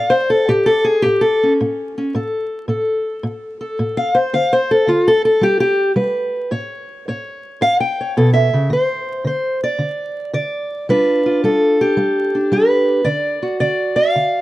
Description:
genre	acoustic country blues, solo or duo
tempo	110 BPM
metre	4/4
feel	swing 67% on 8ths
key	unclear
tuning	A4 = 440 Hz
part	fingerpicked steel-string acoustic guitar	solo	0.0-14.4 s	A2 to G5	-15 LUFS	equal	none
room	small room ambience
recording	dry, close 1970s-style studio recording, vinyl crackle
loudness	-14 LUFS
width	side -16 dB against mid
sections	0.0-8.7 A section; 8.7-14.4 B section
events	steel-string acoustic guitar solo 0.0-8.7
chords	0.0 A; 4.3 N.C.; 5.4 G; 6.5 A; 8.7 N.C.; 10.9 G7; 13.1 D

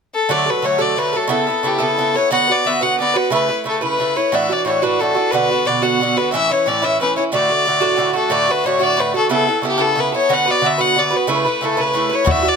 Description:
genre	celtic folk, Celtic jig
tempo	120 BPM (dotted quarters)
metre	6/8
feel	straight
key	D major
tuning	A4 = 440 Hz
part	rich fiddle	melody	0.1-12.6 s	G4 to F#5	-17 LUFS	left 4 dB	tape echo
part	Irish bouzouki	accompaniment	0.3-12.6 s	A2 to B4	-18 LUFS	right 5 dB	none
part	bodhran	percussion	12.3-12.5 s	none	-19 LUFS	left 3 dB	none
room	little or no reverb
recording	close, detailed microphones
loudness	-14 LUFS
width	side -6 dB against mid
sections	0.3-8.3 A section; 8.3-12.6 A section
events	none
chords	0.3 D; 1.3 Aadd9/C#; 2.3 Bm; 3.3 Aadd9; 4.3 Dadd9; 5.3 Bm; 6.3 A; 7.3 D; 9.3 Aadd9/C#; 10.3 Bm; 11.3 Aadd9

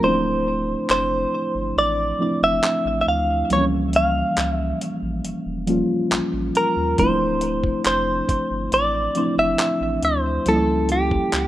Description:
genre	contemporary R&B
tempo	69 BPM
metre	4/4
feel	straight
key	D minor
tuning	A4 = 440 Hz
part	direct-recorded clean electric guitar	melody	0.0-11.5 s	G4 to F5	-21 LUFS	equal	digital delay
part	muted felt-like synth keys	accompaniment	0.0-11.5 s	E3 to F4	-23 LUFS	equal	chorus
part	warm sub bass	bass	0.0-11.5 s	D1 to Eb2	-28 LUFS	equal	none
part	dusty soul sampler-style drum kit	drums	0.9-11.5 s	handclaps, hi-hat, kick drum	-25 LUFS	equal	none
room	digital ambience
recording	rough home demo mix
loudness	-18 LUFS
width	side -14 dB against mid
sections	0.0-11.5 A section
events	break 0.0-7.0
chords	0.0 Dm9; 3.5 A7b9b13; 7.0 Dm9; 10.5 A7b9b13

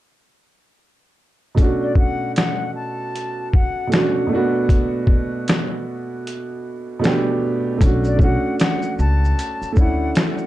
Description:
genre	lo-fi hip hop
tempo	77 BPM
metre	4/4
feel	swing 61% on 16ths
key	B minor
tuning	A4 = 440 Hz
part	warm upright piano	accompaniment	1.5-10.5 s	B2 to G4	-22 LUFS	right 2 dB	low-pass filter, plate reverb
part	boom bap sampler-style drum kit	drums	1.6-10.5 s	hi-hat, kick drum, shaker, snare drum	-17 LUFS	equal	vintage 12-bit sampler grit
part	silver concert flute	melody	1.8-10.1 s	D5 to A5	-27 LUFS	left 4 dB	low-pass filter, plate reverb, tape echo
part	upright bass	bass	7.8-10.1 s	B1 to D2	-19 LUFS	equal	none
room	moderate small room reverb, RT60 0.5 s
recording	dark, warm production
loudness	-17 LUFS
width	side -15 dB against mid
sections	1.6-7.8 A section; 7.8-10.5 B section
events	kick muted 6.3-7.8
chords	1.6 Bm7; 4.3 Gmaj7/B; 7.8 Bm7

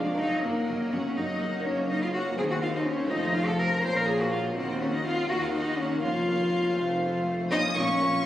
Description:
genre	classical, baroque-style concerto movement with solo episodes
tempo	82 BPM (dotted quarters)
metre	6/8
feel	straight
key	Bb minor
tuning	A4 = 440 Hz
part	dark cello	melody	0.0-8.3 s	Bb3 to C5	-28 LUFS	left 1 dB	none
part	rich chamber violin section	melody	0.0-8.2 s	C5 to Eb6	-35 LUFS	left 1 dB	none
part	rich chamber violin section	second line	0.0-8.2 s	Bb4 to C6	-37 LUFS	left 2 dB	none
part	lute	accompaniment	0.0-8.2 s	Eb2 to Gb4	-34 LUFS	equal	none
part	rich chamber viola section	accompaniment	0.0-8.2 s	Gb3 to Db4	-36 LUFS	right 1 dB	none
part	rich symphonic cello section	bass	0.0-8.1 s	Eb2 to Bb2	-36 LUFS	equal	none
part	warm symphonic double bass section	bass	0.0-8.1 s	F1 to Eb2	-34 LUFS	equal	none
room	wet concert hall reverb, RT60 2.3 s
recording	recorded on a phone in the room, club reverb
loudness	-25 LUFS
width	side -12 dB against mid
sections	0.0-7.5 A section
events	none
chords	0.2 Ebm/Gb; 1.6 Gb; 2.4 Ebm13; 3.1 F; 3.8 Bbm; 4.6 Ebm; 6.0 Bbm/F; 6.8 F; 7.5 Bbm

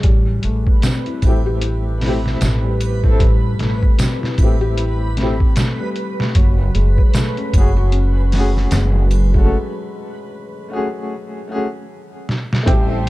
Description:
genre	trip hop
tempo	76 BPM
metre	4/4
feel	swing 59% on 16ths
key	unclear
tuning	A4 = 438 Hz
part	warm upright piano	accompaniment	0.0-13.1 s	A3 to A4	-24 LUFS	left 2 dB	tremolo, low-pass filter, tape echo
part	felt-muted upright piano	arpeggios	0.0-13.1 s	F#3 to G4	-26 LUFS	left 3 dB	tape echo
part	upright bass	bass	0.0-13.1 s	F#1 to A1	-17 LUFS	equal	none
part	trip hop sampler-style drum kit	drums	0.0-13.1 s	hi-hat, kick drum, snare drum	-16 LUFS	equal	none
part	backwards swelling texture	texture	0.5-9.5 s	B4	-31 LUFS	right 4 dB	built-in reverb
part	tambourine and triangle	percussion	0.8-9.3 s	none	-36 LUFS	right 6 dB	none
part	santur	melody	12.7-13.1 s	G4	-24 LUFS	right 2 dB	none
part	warm studio violin section	sustained chords	12.7-13.1 s	A3 to C5	-31 LUFS	equal	none
room	little or no reverb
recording	dark, warm production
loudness	-14 LUFS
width	side -18 dB against mid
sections	0.0-12.7 A section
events	filter sweep on upright piano 0.0-12.7; break 9.5-12.7; drum fill 12.3-12.7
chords	0.0 Am7; 6.4 F#madd9

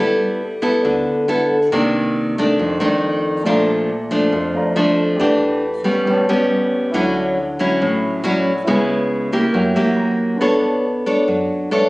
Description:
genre	bossa nova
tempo	138 BPM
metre	4/4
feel	straight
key	D major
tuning	A4 = 440 Hz
part	nylon-string guitar	accompaniment	0.0-11.9 s	F2 to C#5	-15 LUFS	equal	none
part	woody FM bass	bass	0.0-11.5 s	G1 to F#2	-33 LUFS	equal	none
part	warm baby grand piano	accompaniment	3.4-11.9 s	A3 to Bb5	-25 LUFS	equal	none
room	light reverb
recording	recorded on a phone in the room, studio reverb, compression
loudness	-15 LUFS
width	side -22 dB against mid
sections	0.0-11.9 A section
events	grand piano fill 9.5-10.4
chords	0.0 G69; 1.7 Cm9; 2.6 F6; 3.5 Bbmaj7; 5.2 Em11; 6.1 A9; 6.9 Dmaj9; 8.7 C#m7; 9.5 F#7b9; 10.4 Bm9

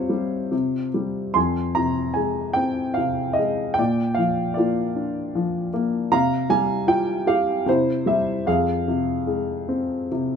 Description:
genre	classical, lyrical solo piano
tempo	76 BPM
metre	3/4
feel	uneven beats, rubato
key	F minor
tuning	A4 = 440 Hz
part	dark grand piano	solo	0.0-10.4 s	F2 to C6	-20 LUFS	equal	none
room	moderate studio reverb, RT60 0.5 s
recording	minimal, uncompressed stereo recording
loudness	-20 LUFS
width	side -7 dB against mid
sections	0.0-10.4 A section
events	none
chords	0.0 Csus4; 1.4 Fm; 3.8 Bb; 6.1 Csus4; 7.7 C; 8.5 Fm

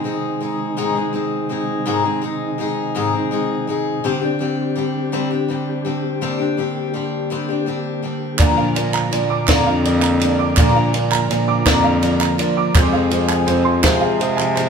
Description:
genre	indie folk with a building arrangement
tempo	55 BPM (dotted quarters)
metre	6/8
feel	straight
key	C minor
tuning	A4 = 439 Hz
part	picked steel-string acoustic guitar	accompaniment	0.0-14.7 s	Ab2 to Bb4	-21 LUFS	left 5 dB	none
part	mellow tonewheel organ	sustained chords	0.0-14.7 s	C3 to G4	-24 LUFS	right 2 dB	slow rotary speaker, chorus vibrato
part	dark concert grand piano	accompaniment	8.4-14.7 s	F1 to D5	-25 LUFS	right 7 dB	none
part	dark upright piano	arpeggios	8.4-14.7 s	C5 to D6	-22 LUFS	right 5 dB	none
part	warm bass clarinet	bass	8.4-14.7 s	F2 to C3	-20 LUFS	left 1 dB	none
part	compact cocktail drum kit	drums	8.4-14.7 s	kick drum, ride cymbal, snare drum	-20 LUFS	right 1 dB	none
part	group handclap	percussion	8.4-14.7 s	none	-25 LUFS	right 5 dB	none
room	moderate large studio reverb, RT60 1.0 s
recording	band playing live in one room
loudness	-16 LUFS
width	side -6 dB against mid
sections	0.0-14.7 A section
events	none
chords	0.0 Ab; 4.0 Csus2; 8.4 Bb; 12.8 Fm

